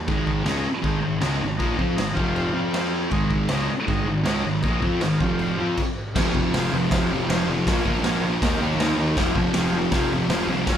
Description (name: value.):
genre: garage rock duo or trio.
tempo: 158 BPM.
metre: 4/4.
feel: straight.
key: F minor.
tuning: A4 = 439 Hz.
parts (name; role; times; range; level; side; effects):
fuzz fingered electric bass; bass; 0.0-10.8 s; F1 to F2; -30 LUFS; equal; overdrive.
overdriven combo organ; sustained chords; 0.1-10.8 s; Eb4 to Ab5; -32 LUFS; equal; none.
thick fuzz guitar; riff; 0.1-10.8 s; F2 to F4; -23 LUFS; equal; distortion.
raw garage drum kit; drums; 0.1-10.8 s; crash cymbal, hi-hat, kick drum, snare drum; -26 LUFS; equal; none.
room: light reverb.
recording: band playing live in one room.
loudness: -20 LUFS.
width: side -9 dB against mid.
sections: 0.0-6.2 A section; 6.2-10.8 B section.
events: transistor combo organ fill 2.5-3.1; stop 5.8-6.2.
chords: 0.1 Ab5; 2.2 F5; 3.1 Ab5; 5.2 F5; 6.2 Fm; 7.7 Bbm; 8.4 Eb; 9.2 Fm.